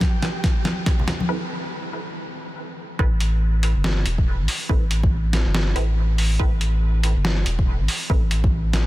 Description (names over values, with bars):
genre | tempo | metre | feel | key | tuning
deep dubstep | 141 BPM | 4/4 | swing 60% on 16ths, half-time | A minor | A4 = 435 Hz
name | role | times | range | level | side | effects
saturated sub bass | bass | 0.0-8.8 s | E1 to A1 | -20 LUFS | equal | high-pass filter
electronic kick drum | drums | 0.0-8.5 s | none | -20 LUFS | equal | studio reverb
trip hop sampler-style drum kit | drums | 0.0-8.8 s | hi-hat, snare drum | -26 LUFS | equal | overdrive, studio reverb
congas | percussion | 0.0-1.3 s | none | -30 LUFS | left 1 dB | dub echo
flickering grainy texture | texture | 0.0-1.3 s | G4 to G5 | -38 LUFS | right 1 dB | built-in reverb
filtered dub chord stab | stabs | 1.3-8.2 s | C4 to B4 | -33 LUFS | right 1 dB | phaser, dub echo
room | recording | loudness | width
digital ambience | dense, heavily limited modern master | -19 LUFS | side -17 dB against mid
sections
0.0-3.0 A section; 3.0-8.9 B section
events
build-up 0.0-3.0; drum fill 0.0-1.3; filter sweep on synth stab 0.0-3.0; break 1.3-3.0; drop 3.0-8.9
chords
0.0 A5; 3.0 Amadd9